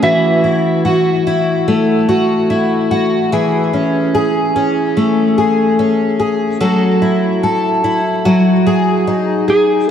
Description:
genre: dream pop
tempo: 73 BPM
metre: 4/4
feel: straight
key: A lydian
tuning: A4 = 441 Hz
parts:
  - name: electric slide guitar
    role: melody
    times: 0.0-1.2, 9.5-9.9 s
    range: G#4 to E5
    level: -16 LUFS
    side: right 2 dB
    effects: none
  - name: fingerpicked twelve-string acoustic guitar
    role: arpeggios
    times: 0.0-9.9 s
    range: E3 to A4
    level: -12 LUFS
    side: left 1 dB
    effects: lush chorus, tape echo
room: wet lush hall reverb, RT60 2.7 s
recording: dark, warm production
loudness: -12 LUFS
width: side -8 dB against mid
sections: 0.0-9.9 A section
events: none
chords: 0.0 Esus24; 3.3 Amaj7; 6.6 F#m7; 8.3 D#madd11/F#

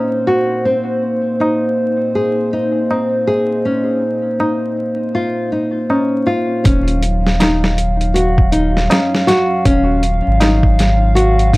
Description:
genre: trip hop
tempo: 80 BPM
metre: 4/4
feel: swing 60% on 16ths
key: Eb dorian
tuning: A4 = 440 Hz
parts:
  - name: dark analog pad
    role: sustained chords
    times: 0.0-11.6 s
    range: Gb3 to F5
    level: -18 LUFS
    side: equal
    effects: chorus
  - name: nylon-string guitar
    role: arpeggios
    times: 0.0-11.6 s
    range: C4 to Ab4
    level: -18 LUFS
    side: left 1 dB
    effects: tape echo
  - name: bowed-like drone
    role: texture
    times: 0.0-6.7 s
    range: Eb4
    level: -30 LUFS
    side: right 1 dB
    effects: none
  - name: tabla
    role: percussion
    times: 1.4-10.6 s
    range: none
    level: -24 LUFS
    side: equal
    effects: none
  - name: soft dub sub bass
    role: bass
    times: 6.7-11.6 s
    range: Eb1 to Ab1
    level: -15 LUFS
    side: equal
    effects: tube saturation
  - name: dusty soul sampler-style drum kit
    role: drums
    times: 6.7-11.6 s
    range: hi-hat, kick drum, snare drum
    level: -15 LUFS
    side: equal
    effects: none
room: little or no reverb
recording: dry, gritty hardware recording, transformer saturation, vinyl crackle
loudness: -13 LUFS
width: side -22 dB against mid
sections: 0.0-6.7 A section; 6.7-11.6 B section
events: none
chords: 0.0 Ebm7; 0.7 Ab; 3.7 Dbadd9; 6.7 Ebm7

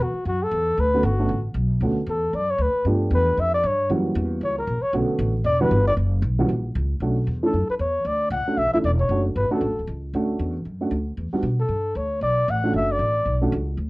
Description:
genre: jazz, small-group swing and bop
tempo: 231 BPM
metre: 4/4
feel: swing 58% on 8ths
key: B minor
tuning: A4 = 440 Hz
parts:
  - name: mellow flugelhorn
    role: melody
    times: 0.0-13.4 s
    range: F#4 to F#5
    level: -22 LUFS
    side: left 1 dB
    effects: none
  - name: upright bass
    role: bass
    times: 0.0-13.9 s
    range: D1 to B2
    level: -24 LUFS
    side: equal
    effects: none
  - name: dark upright piano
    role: accompaniment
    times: 0.9-13.5 s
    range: D3 to G4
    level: -24 LUFS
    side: right 1 dB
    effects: none
room: moderate studio reverb, RT60 0.6 s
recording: worn, warbling old tape, cassette tape, warbly pitch drift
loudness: -20 LUFS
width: side -22 dB against mid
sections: 0.0-7.0 A section; 7.0-13.9 B section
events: flugelhorn solo 0.0-7.0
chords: 0.0 Bm7; 2.9 G7; 3.9 F#7b9; 4.9 Bm7; 5.5 Em7; 6.0 F#; 7.0 Bm7 (rootless); 11.2 Em7; 12.2 Bm7

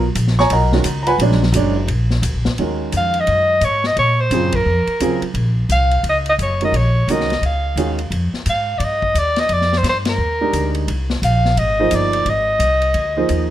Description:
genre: modal jazz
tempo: 174 BPM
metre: 4/4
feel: swing 63% on 8ths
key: Eb dorian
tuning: A4 = 440 Hz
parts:
  - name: warm upright piano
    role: accompaniment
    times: 0.0-8.0, 10.4-13.5 s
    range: Db3 to Db6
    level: -19 LUFS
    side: right 3 dB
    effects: none
  - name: upright bass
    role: bass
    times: 0.0-13.5 s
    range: F#1 to Bb2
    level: -18 LUFS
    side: equal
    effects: none
  - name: vintage drum kit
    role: drums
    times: 0.2-13.4 s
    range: hi-hat, kick drum, ride cymbal, snare drum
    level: -27 LUFS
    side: left 2 dB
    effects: none
  - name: warm soprano saxophone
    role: melody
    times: 3.0-13.5 s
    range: Bb4 to F5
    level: -17 LUFS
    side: equal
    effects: plate reverb
room: light reverb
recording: none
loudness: -15 LUFS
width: side -12 dB against mid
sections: 0.0-2.6 A section; 2.6-13.5 B section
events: band accent 4.5, 10.0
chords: 0.0 Abm11; 1.2 Bb7alt; 2.6 Ebm9; 8.1 Fm9

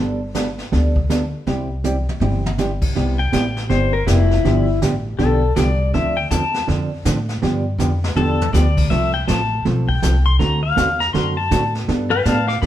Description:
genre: country, western swing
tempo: 161 BPM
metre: 4/4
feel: swing 63% on 8ths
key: C major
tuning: A4 = 442 Hz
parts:
  - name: hollow-body jazz guitar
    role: accompaniment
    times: 0.0-12.7 s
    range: C3 to A4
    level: -21 LUFS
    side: right 3 dB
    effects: none
  - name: upright bass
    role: bass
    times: 0.0-12.7 s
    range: F1 to B2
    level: -19 LUFS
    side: equal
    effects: none
  - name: jazz brush drum kit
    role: drums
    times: 0.3-12.7 s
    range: brushed snare drum, crash cymbal, hi-hat, kick drum, snare drum, toms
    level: -26 LUFS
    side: equal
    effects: none
  - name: pedal steel guitar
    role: second line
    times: 3.2-12.7 s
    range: E4 to D6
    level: -21 LUFS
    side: left 4 dB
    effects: none
room: moderate stone room reverb, RT60 1.0 s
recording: band playing live in one room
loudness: -16 LUFS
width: side -12 dB against mid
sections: 0.0-3.0 A section; 3.0-12.7 B section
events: drum fill 1.8-2.6, 7.8-8.5; pedal steel guitar solo 3.0-12.7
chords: 0.0 Gadd9; 1.5 C; 3.0 Cmaj7; 4.4 G7; 5.9 Dm7; 7.4 G7; 8.9 F; 10.4 D7; 11.9 Gadd9

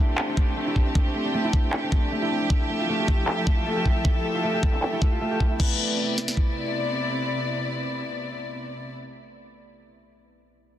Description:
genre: future bass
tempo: 155 BPM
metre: 4/4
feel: half-time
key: C major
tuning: A4 = 440 Hz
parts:
  - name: dark studio string section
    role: sustained chords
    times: 0.0-8.9 s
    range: C3 to E5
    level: -28 LUFS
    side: left 1 dB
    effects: sidechain pumping
  - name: concert harp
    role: arpeggios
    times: 0.0-8.7 s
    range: A3 to G4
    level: -29 LUFS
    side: right 1 dB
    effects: sidechain pumping, digital delay
  - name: pop drum kit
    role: drums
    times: 0.2-5.7 s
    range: crash cymbal, finger snaps, handclaps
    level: -30 LUFS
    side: left 2 dB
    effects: low-pass filter on hats, low-pass filter on cymbals, soft clipping on snare, low-pass filter on snare
  - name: trap drum kit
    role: drums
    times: 0.4-6.5 s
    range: kick drum, snare drum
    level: -22 LUFS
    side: equal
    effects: none
room: light reverb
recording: dense, heavily limited modern master, faint mains hum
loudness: -22 LUFS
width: side -11 dB against mid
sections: 0.0-5.6 A section; 5.6-8.7 B section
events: filter sweep on drum 0.0-5.6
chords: 0.0 Am11; 2.5 Fmaj9; 5.6 Cmaj9

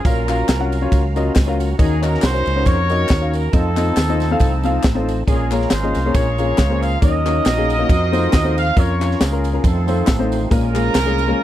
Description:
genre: uptempo gospel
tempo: 138 BPM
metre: 4/4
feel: swing 55% on 8ths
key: Bb minor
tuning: A4 = 439 Hz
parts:
  - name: warm horn section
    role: melody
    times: 0.0-11.4 s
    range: C4 to F5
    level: -22 LUFS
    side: right 2 dB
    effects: slapback echo
  - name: warm concert grand piano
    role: accompaniment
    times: 0.0-11.4 s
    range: Bb2 to Gb5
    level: -22 LUFS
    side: left 4 dB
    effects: none
  - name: overdriven tonewheel organ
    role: sustained chords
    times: 0.0-11.4 s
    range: Eb3 to Eb5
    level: -29 LUFS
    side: right 7 dB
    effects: chorus vibrato, stopped rotary speaker
  - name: tight funk drum kit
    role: drums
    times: 0.0-11.3 s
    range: kick drum, ride cymbal, snare drum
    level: -17 LUFS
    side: equal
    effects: none
  - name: fingered electric bass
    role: bass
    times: 0.1-11.3 s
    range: Ab1 to F2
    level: -20 LUFS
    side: equal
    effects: none
  - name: tambourine and handclaps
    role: percussion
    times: 0.1-11.3 s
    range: none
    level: -34 LUFS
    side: left 4 dB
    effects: none
room: small room ambience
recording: dry, close 1970s-style studio recording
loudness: -15 LUFS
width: side -12 dB against mid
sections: 0.0-11.4 A section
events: none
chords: 0.1 Gbmaj7/Bb; 1.8 Ebm7; 3.5 F7; 5.3 Bbm7; 7.0 Ebm7; 7.9 F7; 8.8 Bbm/F; 9.6 F7; 10.5 Bbm7

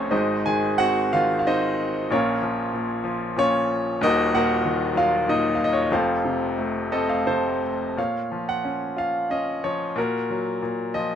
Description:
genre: classical, lyrical solo piano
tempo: 83-98 BPM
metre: 3/4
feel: rubato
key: Bb minor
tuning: A4 = 440 Hz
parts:
  - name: bright grand piano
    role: solo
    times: 0.0-11.2 s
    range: Eb1 to A5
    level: -21 LUFS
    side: equal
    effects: none
room: light reverb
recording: none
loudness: -21 LUFS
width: side -8 dB against mid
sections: 0.0-8.0 A section; 8.0-11.2 B section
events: grand piano fill 6.6-8.0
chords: 0.1 Ab; 2.1 Bbm; 4.0 Ebm; 5.9 F; 8.0 Bbm; 10.0 Ebmadd9/Bb

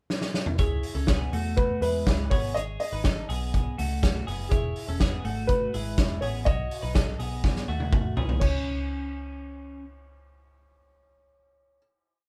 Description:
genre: jangly indie pop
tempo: 123 BPM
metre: 4/4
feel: straight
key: C# minor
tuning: A4 = 439 Hz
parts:
  - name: loose indie drum kit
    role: drums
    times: 0.1-8.5 s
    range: crash cymbal, hi-hat, kick drum, snare drum, toms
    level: -29 LUFS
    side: equal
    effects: none
  - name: dark upright piano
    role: melody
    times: 0.6-11.8 s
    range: G#4 to D#5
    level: -34 LUFS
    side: equal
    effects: none
  - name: twelve-string electric guitar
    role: arpeggios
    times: 0.6-9.8 s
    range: G#3 to C#5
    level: -37 LUFS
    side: equal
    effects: none
  - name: vintage muted picked electric bass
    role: bass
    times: 0.6-11.8 s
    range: E1 to E2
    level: -34 LUFS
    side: equal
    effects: none
room: light reverb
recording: band playing live in one room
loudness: -27 LUFS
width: mono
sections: 0.0-0.6 pickup bar; 0.6-8.4 verse; 8.4-12.3 final note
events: drum fill 0.1-0.6, 7.4-8.4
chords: 0.0 N.C.; 0.6 C#m7; 2.3 G#m; 4.5 E6; 6.5 B7; 8.4 N.C.

